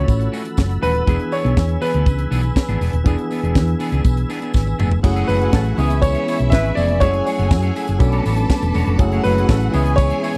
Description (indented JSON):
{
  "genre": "disco",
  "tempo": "121 BPM",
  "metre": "4/4",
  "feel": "straight",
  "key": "F# minor",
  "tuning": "A4 = 439 Hz",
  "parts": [
    { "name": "clear concert grand piano", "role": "melody", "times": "0.0-10.4 s", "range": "B4 to E5", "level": "-25 LUFS", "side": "equal", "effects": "none" },
    { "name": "barky tine electric piano", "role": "accompaniment", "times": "0.0-10.4 s", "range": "E3 to A4", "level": "-27 LUFS", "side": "equal", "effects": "overdrive" },
    { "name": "electric guitar at the edge of break-up", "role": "accompaniment", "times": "0.0-10.4 s", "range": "E3 to E5", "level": "-32 LUFS", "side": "equal", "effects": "none" },
    { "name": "tonewheel organ", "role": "sustained chords", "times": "0.0-10.4 s", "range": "A3 to E6", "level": "-33 LUFS", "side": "equal", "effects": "chorus vibrato, lush chorus" },
    { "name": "hollow-body short-scale fingered electric bass", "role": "bass", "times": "0.0-10.1 s", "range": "D#1 to F#2", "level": "-21 LUFS", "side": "equal", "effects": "none" },
    { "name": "tight funk drum kit", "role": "drums", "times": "0.1-10.4 s", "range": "crash cymbal, hi-hat, kick drum, snare drum, toms", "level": "-19 LUFS", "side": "equal", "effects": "none" },
    { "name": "tambourine", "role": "percussion", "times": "0.1-10.3 s", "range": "none", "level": "-45 LUFS", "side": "equal", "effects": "none" },
    { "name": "clear studio string section", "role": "second line", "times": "5.0-10.4 s", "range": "E4 to A5", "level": "-31 LUFS", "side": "equal", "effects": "none" },
    { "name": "mellow horn section", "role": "stabs", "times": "5.4-10.3 s", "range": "E3 to C#5", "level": "-29 LUFS", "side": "equal", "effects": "none" }
  ],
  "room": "little or no reverb",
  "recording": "dry, close 1970s-style studio recording",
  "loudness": "-18 LUFS",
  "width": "mono",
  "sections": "0.0-5.0 A section; 5.0-10.4 B section",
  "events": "drum fill 4.5-5.0",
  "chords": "0.0 F#m7; 1.1 E7; 5.0 F#m9; 5.8 C#m7; 7.0 F#m9; 8.0 Bm9; 9.0 F#m9; 9.7 C#m7",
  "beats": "0.08 0.58 | 1.07 1.57 2.06 2.56 | 3.05 3.55 4.05 4.54 | 5.04 5.53 6.03 6.52 | 7.02 7.51 8.01 8.50 | 8.99 9.49 9.98"
}